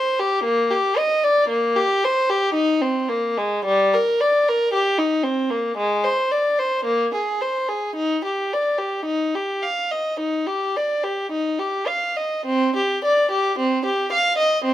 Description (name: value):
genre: classical, baroque-style suite movement for unaccompanied violin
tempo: 51-58 BPM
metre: 4/4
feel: rubato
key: Eb major from 3.6 s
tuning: A4 = 439 Hz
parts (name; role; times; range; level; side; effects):
- dark violin; solo; 0.0-14.7 s; G3 to F5; -18 LUFS; equal; none
room: light reverb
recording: minimal, uncompressed stereo recording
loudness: -18 LUFS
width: side -12 dB against mid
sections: 0.0-12.5 A section; 12.5-14.7 A section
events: none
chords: none